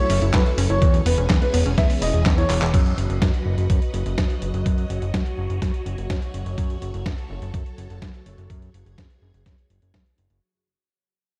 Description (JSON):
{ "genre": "italo disco", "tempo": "125 BPM", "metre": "4/4", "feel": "straight", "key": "unclear", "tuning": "A4 = 440 Hz", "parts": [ { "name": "dark baby grand piano", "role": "melody", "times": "0.0-2.6 s", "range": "B4 to E5", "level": "-28 LUFS", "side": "equal", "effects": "tape echo" }, { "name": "phased string machine", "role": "sustained chords", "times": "0.0-10.4 s", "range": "E3 to D#5", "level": "-34 LUFS", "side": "equal", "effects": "ensemble chorus, phaser" }, { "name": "analog pluck", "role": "arpeggios", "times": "0.0-2.7 s", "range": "E3 to G#4", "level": "-32 LUFS", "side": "equal", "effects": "chorus, tape echo" }, { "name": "fat analog bass", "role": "bass", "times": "0.1-10.4 s", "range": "E1 to F#2", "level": "-26 LUFS", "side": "equal", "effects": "none" }, { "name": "dusty soul sampler-style drum kit", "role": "drums", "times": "0.1-10.4 s", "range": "crash cymbal, handclaps, hi-hat, snare drum", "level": "-30 LUFS", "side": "equal", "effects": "small room reverb" }, { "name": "electronic kick drum", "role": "drums", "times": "0.3-10.0 s", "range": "none", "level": "-24 LUFS", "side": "equal", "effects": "small room reverb" } ], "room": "light reverb, digital ambience", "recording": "dark, warm production", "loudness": "-22 LUFS", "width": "mono", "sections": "0.0-2.7 A section; 2.7-10.4 B section", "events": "drum fill 2.5; fade-out 2.7-10.4", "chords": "0.0 A/F#; 0.8 E6; 2.7 B/F#; 6.6 A/F#" }